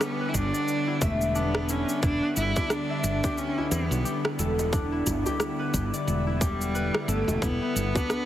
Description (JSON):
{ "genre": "organic downtempo", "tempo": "89 BPM", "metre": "4/4", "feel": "swing 59% on 16ths", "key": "E minor", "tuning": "A4 = 440 Hz", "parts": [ { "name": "clear cello", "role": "melody", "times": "0.0-8.3 s", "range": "G3 to E4", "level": "-31 LUFS", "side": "right 1 dB", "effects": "digital delay" }, { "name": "bowed-like drone", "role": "sustained chords", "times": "0.0-8.3 s", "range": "D3 to F#5", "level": "-32 LUFS", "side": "equal", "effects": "built-in reverb, sidechain pumping" }, { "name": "concert harp", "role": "arpeggios", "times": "0.0-8.3 s", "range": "B3 to D6", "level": "-30 LUFS", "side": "left 2 dB", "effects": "low-pass filter, digital delay" }, { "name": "electronic rim click and cabasa", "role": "drums", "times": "0.0-8.3 s", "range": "none", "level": "-31 LUFS", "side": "equal", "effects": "overdrive, studio reverb" }, { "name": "woody fretless electric bass", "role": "bass", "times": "0.3-7.9 s", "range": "E1 to E2", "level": "-29 LUFS", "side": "equal", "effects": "none" }, { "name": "electronic kick drum", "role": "drums", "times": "0.3-8.1 s", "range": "none", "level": "-27 LUFS", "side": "equal", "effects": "studio reverb" }, { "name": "djembe", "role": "percussion", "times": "2.6-8.1 s", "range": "none", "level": "-38 LUFS", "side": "right 2 dB", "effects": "none" } ], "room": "light reverb, small room ambience", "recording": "heavily compressed radio sound", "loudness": "-24 LUFS", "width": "side -12 dB against mid", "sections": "0.0-8.3 A section", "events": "none", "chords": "0.0 Em7", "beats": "0.01 0.68 1.36 | 2.03 2.71 3.38 4.05 | 4.73 5.40 6.08 6.75 | 7.42 8.10" }